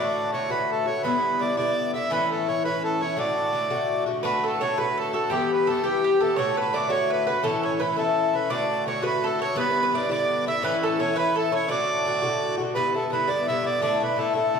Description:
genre	celtic folk, Celtic jig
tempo	113 BPM (dotted quarters)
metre	6/8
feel	straight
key	D major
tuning	A4 = 440 Hz
part	accordion	melody	0.0-14.6 s	G4 to E5	-25 LUFS	right 3 dB	none
part	Irish bouzouki	accompaniment	0.0-14.6 s	G2 to G4	-25 LUFS	left 4 dB	none
part	mandolin	second line	4.2-12.5 s	G4 to E5	-29 LUFS	right 3 dB	none
room	wet recital hall reverb, RT60 1.6 s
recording	heard from further back in the room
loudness	-22 LUFS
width	side -6 dB against mid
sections	0.0-4.2 A section; 4.2-12.8 A section; 12.8-14.6 B section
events	none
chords	0.0 D; 1.0 Em7; 2.1 A; 3.2 D; 5.3 Em; 6.4 D; 7.4 A; 8.5 D; 9.6 Em7; 10.6 A; 11.7 D; 12.8 Em7; 13.8 Dsus2

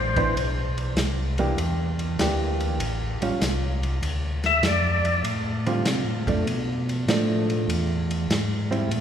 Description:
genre	soul jazz organ trio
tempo	98 BPM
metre	4/4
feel	swing 68% on 8ths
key	unclear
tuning	A4 = 442 Hz
part	percussive tonewheel organ	melody	0.0-0.3, 4.5-5.2 s	C5 to E5	-25 LUFS	left 2 dB	slow rotary speaker
part	mellow tonewheel organ	bass	0.0-9.0 s	A1 to C3	-26 LUFS	equal	chorus vibrato, slow rotary speaker
part	hollow-body jazz guitar	accompaniment	0.2-8.9 s	D3 to G4	-28 LUFS	right 2 dB	none
part	warm soul drum kit	drums	0.2-9.0 s	hi-hat, kick drum, ride cymbal, snare drum	-29 LUFS	equal	none
room	wet church reverb, RT60 3.5 s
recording	recorded in a church or concert hall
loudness	-22 LUFS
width	side -9 dB against mid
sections	0.0-9.0 A section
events	tonewheel organ solo 0.0-9.0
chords	0.0 Cmaj9; 1.6 Em7b5; 2.8 A7alt; 4.0 Dm7; 6.5 Bm7b5; 7.7 E

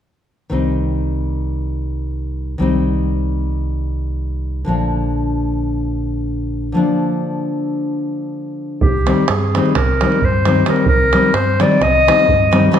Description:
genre	balkan folk, Balkan wedding band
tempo	260 BPM (eighths)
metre	9/8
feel	straight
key	C minor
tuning	A4 = 440 Hz
part	nylon-string guitar	accompaniment	0.5-12.8 s	D3 to Eb4	-18 LUFS	left 2 dB	none
part	fingered electric bass	bass	0.5-12.7 s	Bb1 to G2	-20 LUFS	right 1 dB	none
part	warm clarinet	melody	8.8-12.7 s	G4 to Eb5	-16 LUFS	left 1 dB	none
part	davul	percussion	8.8-12.8 s	none	-19 LUFS	right 4 dB	none
room	wet recital hall reverb, RT60 1.7 s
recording	none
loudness	-15 LUFS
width	side -9 dB against mid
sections	0.5-8.8 A section; 8.8-12.8 B section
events	none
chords	0.5 Cm; 4.7 Bb; 8.8 Cm

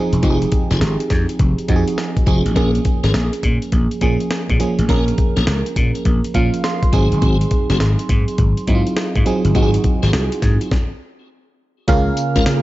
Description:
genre	R&B, new jack swing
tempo	103 BPM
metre	4/4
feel	swing 65% on 16ths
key	Bb minor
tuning	A4 = 440 Hz
part	FM electric piano	accompaniment	0.0-12.6 s	F3 to C6	-20 LUFS	right 3 dB	chorus
part	vintage slap bass	bass	0.1-12.5 s	E1 to Bb2	-18 LUFS	equal	none
part	breakbeat sampler-style drum kit	drums	0.1-12.6 s	hi-hat, kick drum, snare drum, tambourine	-19 LUFS	equal	none
part	tonewheel organ	stabs	0.2-12.4 s	C4 to Bb4	-25 LUFS	left 2 dB	overdrive, chorus vibrato, slow rotary speaker, tape echo
part	phased analog pad	sustained chords	12.1-12.6 s	Db3 to F5	-21 LUFS	right 1 dB	phaser, chorus
room	digital ambience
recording	dark, warm production, nothing above 7.8 kHz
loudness	-14 LUFS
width	side -17 dB against mid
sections	0.0-11.9 A section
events	FM electric piano fill 6.1-7.2; stop 10.7-11.9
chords	0.0 Fm7; 2.6 Bbm7; 6.9 Ab7; 11.9 Db6

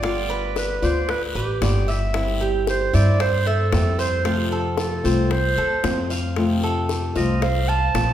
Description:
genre	latin, Cuban son and guajira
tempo	114 BPM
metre	4/4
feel	straight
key	unclear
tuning	A4 = 439 Hz
part	clear clarinet	melody	0.0-8.1 s	G4 to A5	-25 LUFS	right 3 dB	none
part	flamenco guitar	accompaniment	0.0-8.1 s	C3 to F4	-26 LUFS	left 3 dB	none
part	Cuban tres	arpeggios	0.0-8.1 s	F4 to F5	-28 LUFS	right 4 dB	none
part	upright bass	bass	0.0-8.1 s	G1 to G2	-22 LUFS	equal	none
part	bongos	percussion	0.0-8.1 s	none	-30 LUFS	left 4 dB	none
part	guiro	percussion	0.0-8.1 s	none	-35 LUFS	left 4 dB	none
room	wet recital hall reverb, RT60 1.5 s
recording	recorded in a church or concert hall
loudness	-19 LUFS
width	side -11 dB against mid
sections	0.0-8.1 A section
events	none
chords	0.0 G7; 2.1 C/G; 4.3 F

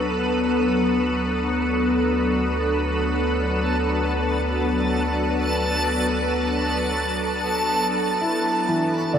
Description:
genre	ambient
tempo	free time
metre	none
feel	none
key	D major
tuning	A4 = 440 Hz
part	soft additive organ-like pad	sustained chords	0.0-9.2 s	F#3 to B4	-21 LUFS	left 1 dB	ensemble chorus, built-in reverb
part	round analog bass	bass	0.0-9.2 s	D2	-28 LUFS	equal	none
part	backwards swelling texture	texture	3.6-9.2 s	A5 to B5	-26 LUFS	equal	built-in reverb
part	felt-muted upright piano	arpeggios	8.2-9.2 s	D3 to E4	-23 LUFS	equal	none
room	wet huge ambient reverb, RT60 8.3 s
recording	none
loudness	-20 LUFS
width	side -8 dB against mid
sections	0.0-8.2 A section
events	fade-in on analog synth bass 0.0-8.2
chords	0.0 D6

